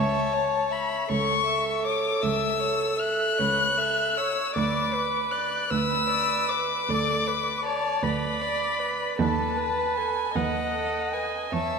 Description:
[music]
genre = classical, slow romantic movement for string quartet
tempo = 52 BPM (dotted quarters)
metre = 12/8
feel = rubato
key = unclear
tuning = A4 = 440 Hz
[part]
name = dark violin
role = melody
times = 0.0-11.8 s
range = F#5 to F#6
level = -26 LUFS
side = left 6 dB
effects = none
[part]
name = rich violin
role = second line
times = 0.0-11.8 s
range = A4 to E5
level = -31 LUFS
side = left 1 dB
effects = none
[part]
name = warm viola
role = accompaniment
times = 0.0-11.8 s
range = A4 to D#5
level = -29 LUFS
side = right 4 dB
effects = none
[part]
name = warm cello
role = bass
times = 0.0-11.8 s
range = C#2 to E2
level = -30 LUFS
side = right 4 dB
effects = none
[sound]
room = wet scoring stage reverb, RT60 1.8 s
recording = none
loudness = -23 LUFS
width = side -5 dB against mid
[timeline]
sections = 0.0-11.8 A section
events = none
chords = 0.0 A/C#; 4.6 Bm/D; 9.2 B7/D#

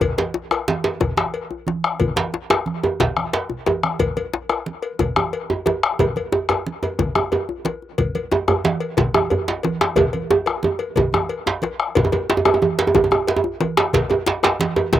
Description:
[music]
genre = west african traditional, West African drum ensemble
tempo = 121 BPM (dotted quarters)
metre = 12/8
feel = straight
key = none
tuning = none
[part]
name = bombo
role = percussion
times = 0.0-15.0 s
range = none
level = -22 LUFS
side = left 4 dB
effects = none
[part]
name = congas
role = percussion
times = 0.0-15.0 s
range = none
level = -28 LUFS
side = right 4 dB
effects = none
[part]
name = cowbell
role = percussion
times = 0.0-15.0 s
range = none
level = -26 LUFS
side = left 6 dB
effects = slapback echo
[part]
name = djembe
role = percussion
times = 0.0-15.0 s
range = none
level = -26 LUFS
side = left 5 dB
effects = none
[part]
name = djembe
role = percussion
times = 0.2-15.0 s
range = none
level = -19 LUFS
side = right 4 dB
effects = none
[sound]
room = light reverb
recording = recorded outdoors, with no room sound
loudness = -18 LUFS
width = side -12 dB against mid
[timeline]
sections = 0.0-12.0 A section; 12.0-15.0 B section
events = drum fill 3.5-4.0, 10.0-12.0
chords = none

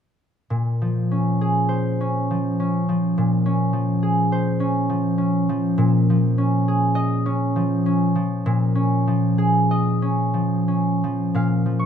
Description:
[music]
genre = classical, solo harp piece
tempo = 59-70 BPM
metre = 3/4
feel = rubato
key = Bb minor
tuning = A4 = 440 Hz
[part]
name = concert harp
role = solo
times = 0.5-11.9 s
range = Bb2 to Db6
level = -18 LUFS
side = equal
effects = none
[sound]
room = moderate large studio reverb, RT60 1.2 s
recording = minimal, uncompressed stereo recording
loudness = -18 LUFS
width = side -8 dB against mid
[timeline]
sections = 0.5-11.3 A section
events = none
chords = 0.5 Bbm9; 5.8 Bbm11; 11.3 Bbm

